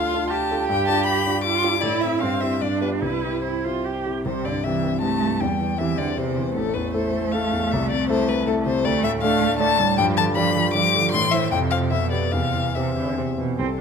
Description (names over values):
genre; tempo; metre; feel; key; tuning
quick classical-period movement for piano trio; 140-160 BPM; 3/4; rubato; C major; A4 = 440 Hz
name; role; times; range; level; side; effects
warm violin; melody; 0.0-13.8 s; A4 to D6; -24 LUFS; left 8 dB; none
rich cello; second line; 0.0-13.7 s; B2 to G4; -25 LUFS; right 8 dB; none
warm concert grand piano; accompaniment; 0.0-13.8 s; A1 to D5; -24 LUFS; left 1 dB; none
room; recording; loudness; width
moderate concert hall reverb, RT60 2.1 s; close, detailed microphones; -19 LUFS; side -6 dB against mid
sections
0.0-4.3 A section; 4.3-13.6 B section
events
none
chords
0.0 Dm; 0.7 G7; 1.8 Am; 2.2 C/G; 2.6 G7; 3.0 C; 5.4 C/E; 6.6 Am; 7.7 Am/C; 8.8 Dm; 10.0 G7; 11.1 Am; 11.5 F5; 11.9 G7/F; 12.3 C/E